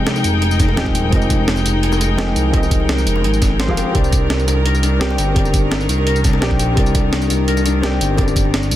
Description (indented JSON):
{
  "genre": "liquid drum and bass",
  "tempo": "170 BPM",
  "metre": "4/4",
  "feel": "straight",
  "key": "F dorian",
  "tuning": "A4 = 440 Hz",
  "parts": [
    { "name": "felt-muted upright piano", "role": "accompaniment", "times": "0.0-8.8 s", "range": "F3 to G5", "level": "-24 LUFS", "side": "equal", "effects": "tape echo" },
    { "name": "clear studio string section", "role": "sustained chords", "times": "0.0-8.8 s", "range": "Eb3 to G5", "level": "-24 LUFS", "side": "right 1 dB", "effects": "vintage 12-bit sampler grit, sidechain pumping" },
    { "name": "concert harp", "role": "arpeggios", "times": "0.0-8.8 s", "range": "D4 to C5", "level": "-23 LUFS", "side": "left 7 dB", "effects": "tape echo" },
    { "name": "smooth synth bass", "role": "bass", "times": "0.0-8.8 s", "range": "Eb1 to C2", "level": "-18 LUFS", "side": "equal", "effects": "none" },
    { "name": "breakbeat sampler-style drum kit", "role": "drums", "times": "0.1-8.8 s", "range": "hi-hat, snare drum, tambourine", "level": "-23 LUFS", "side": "right 1 dB", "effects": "none" },
    { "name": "bongos", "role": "percussion", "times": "0.1-8.5 s", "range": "none", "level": "-32 LUFS", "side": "left 3 dB", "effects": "none" },
    { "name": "electronic kick drum", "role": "drums", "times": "0.6-8.4 s", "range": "none", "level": "-17 LUFS", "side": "equal", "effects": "none" }
  ],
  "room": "small room ambience",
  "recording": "dense, heavily limited modern master",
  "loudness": "-14 LUFS",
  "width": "side -13 dB against mid",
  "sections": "0.0-8.8 A section",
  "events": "none",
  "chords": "0.0 Fm11; 3.9 Cm9",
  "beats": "0.07 0.42 0.77 | 1.13 1.48 1.83 2.18 | 2.54 2.89 3.24 3.60 | 3.95 4.30 4.66 5.01 | 5.36 5.71 6.07 6.42 | 6.77 7.13 7.48 7.83 | 8.18 8.54"
}